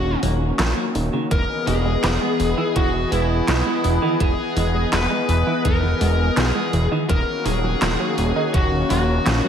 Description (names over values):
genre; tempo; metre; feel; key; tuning
synthwave; 83 BPM; 4/4; straight; unclear; A4 = 440 Hz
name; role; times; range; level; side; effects
dark smooth lead guitar; melody; 0.0-9.5 s; E4 to B4; -24 LUFS; left 1 dB; overdrive, tape echo
warm analog pad; sustained chords; 0.0-9.5 s; Eb3 to D#5; -24 LUFS; left 1 dB; lush chorus, sidechain pumping
wide unison pluck; arpeggios; 0.0-9.5 s; Db3 to B3; -29 LUFS; right 2 dB; ping-pong delay
fat analog bass; bass; 0.0-9.4 s; Eb1 to B1; -21 LUFS; equal; none
clean electric guitar; riff; 0.2-9.5 s; Eb3 to E4; -31 LUFS; right 3 dB; none
pop drum kit; drums; 0.2-9.4 s; handclaps, hi-hat, snare drum; -26 LUFS; equal; overdrive
electronic kick drum; drums; 1.3-8.7 s; none; -21 LUFS; equal; overdrive
room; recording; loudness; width
moderate lush hall reverb, RT60 2.1 s; dreamy mix soaked in reverb; -18 LUFS; side -8 dB against mid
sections
0.0-9.5 A section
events
none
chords
0.0 Ebm7; 1.3 Emaj7; 7.1 Ebm7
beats
0.59 | 1.31 2.04 2.76 3.48 | 4.20 4.93 5.65 6.37 | 7.09 7.82 8.54 9.26